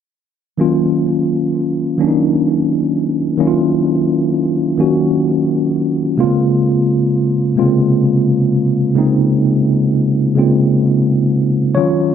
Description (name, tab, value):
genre	R&B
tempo	43 BPM (dotted quarters)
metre	6/8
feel	straight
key	Eb dorian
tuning	A4 = 441 Hz
part	mellow tine electric piano	solo	0.6-12.1 s	C3 to Db5	-12 LUFS	equal	medium stereo tremolo
room	wet plate reverb, RT60 2.6 s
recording	none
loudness	-12 LUFS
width	side -8 dB against mid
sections	0.6-11.8 A section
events	none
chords	0.6 Ebm9; 6.2 Bbm9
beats	| 0.59 1.99 | 3.38 4.78 | 6.17 7.57 | 8.96 10.36 | 11.75